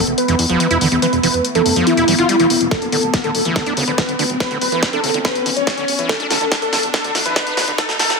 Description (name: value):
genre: psychedelic trance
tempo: 142 BPM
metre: 4/4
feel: straight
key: unclear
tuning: A4 = 445 Hz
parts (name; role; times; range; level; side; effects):
- wide unison lead; melody; 0.0-8.2 s; E4 to C#5; -19 LUFS; right 1 dB; phaser, sidechain pumping, digital delay
- pulsing gated texture; sustained chords; 0.0-8.2 s; B3; -23 LUFS; left 1 dB; chorus, built-in reverb, sidechain pumping
- fat analog bass; bass; 0.0-8.2 s; D1 to E2; -26 LUFS; equal; tube saturation
- riser; sound effects; 0.0-8.2 s; none; -26 LUFS; left 1 dB; none
- big-room dance drum kit; drums; 0.1-8.2 s; hi-hat, snare drum; -20 LUFS; left 2 dB; high-pass filter on hats, studio ambience, high-pass filter on snare
- screaming distorted acid line; riff; 0.3-8.0 s; C#3 to F4; -22 LUFS; moving between left 4 dB and right 5 dB; distortion, chorus, auto-pan, sidechain pumping, dub echo
- electronic kick drum; drums; 2.7-7.9 s; none; -18 LUFS; equal; studio ambience
- vowel-sweep wobble bass; second line; 3.8-5.3 s; A3 to B3; -34 LUFS; left 3 dB; none
room: moderate lush hall reverb, RT60 1.6 s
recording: high-pass filter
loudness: -14 LUFS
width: side -3 dB against mid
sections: 0.0-8.2 A section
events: build-up 0.0-8.2; riser 0.0-8.2; filter sweep on acid bass 0.0-8.2; filter sweep on analog synth lead 0.0-8.2; filter sweep 0.0-8.2; drum fill 2.7-8.2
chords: 0.0 E5; 2.7 D5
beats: 0.18 0.60 | 1.02 1.45 1.87 2.29 | 2.71 3.14 3.56 3.98 | 4.40 4.83 5.25 5.67 | 6.09 6.52 6.94 7.36 | 7.78